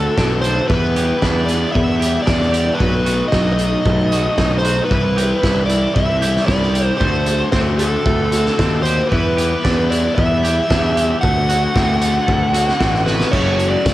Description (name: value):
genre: indie rock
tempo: 114 BPM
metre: 4/4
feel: straight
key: unclear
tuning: A4 = 438 Hz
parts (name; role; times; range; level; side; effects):
- dark smooth lead guitar; melody; 0.0-13.9 s; A4 to F#5; -20 LUFS; right 1 dB; overdrive, cassette tape
- biting overdriven guitar; riff; 0.0-13.9 s; B2 to A4; -23 LUFS; left 7 dB; cassette tape
- twelve-string electric guitar; riff; 0.0-13.9 s; E3 to A4; -27 LUFS; right 6 dB; wide subtle chorus, cassette tape
- fuzz picked electric bass; bass; 0.0-13.9 s; F#1 to E2; -18 LUFS; equal; overdrive
- loose indie drum kit; drums; 0.2-13.9 s; crash cymbal, hi-hat, kick drum, snare drum; -20 LUFS; equal; cassette tape
room: moderate spring reverb, RT60 1.3 s, studio ambience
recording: home recording on cassette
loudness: -14 LUFS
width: side -15 dB against mid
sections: 0.0-13.3 A section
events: drum fill 13.1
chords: 0.0 D7sus4; 0.7 Em7; 2.8 B7; 4.9 Cmaj7; 7.0 D7sus4; 9.1 Em7; 11.2 D7; 13.3 F#m7